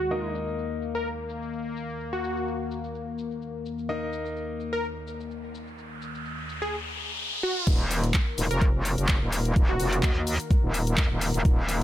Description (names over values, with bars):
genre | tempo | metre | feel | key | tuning
bass house | 127 BPM | 4/4 | swing 55% on 16ths | Eb minor | A4 = 440 Hz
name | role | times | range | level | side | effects
plucky unison lead | melody | 0.0-10.3 s | Gb4 to Bb4 | -32 LUFS | equal | tape echo
sweeping resonant pad | sustained chords | 0.0-11.8 s | Eb2 to Bb4 | -34 LUFS | left 3 dB | chorus, sidechain pumping
bright baby grand piano | stabs | 0.0-6.7 s | Bb3 to Eb5 | -34 LUFS | left 3 dB | vintage 12-bit sampler grit, sidechain pumping, tape echo
house drum kit | drums | 0.0-11.8 s | crash cymbal, handclaps, hi-hat, shaker | -32 LUFS | left 1 dB | low-pass filter on perc, studio reverb, low-pass filter on hats, low-pass filter on cymbals, low-pass filter on snare
riser | sound effects | 5.7-7.7 s | none | -34 LUFS | equal | none
metallic wobble bass | bass | 7.7-11.8 s | Eb1 to Eb2 | -26 LUFS | equal | chorus, overdrive, sidechain pumping
electronic kick drum | drums | 7.7-11.6 s | none | -22 LUFS | equal | overdrive, studio reverb
room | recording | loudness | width
little or no reverb | low-pass filter | -25 LUFS | side -13 dB against mid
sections
0.0-7.7 A section; 7.7-11.8 B section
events
filter sweep 0.0-7.7; riser 5.7-7.7; drop 7.7-11.8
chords
0.0 Eb5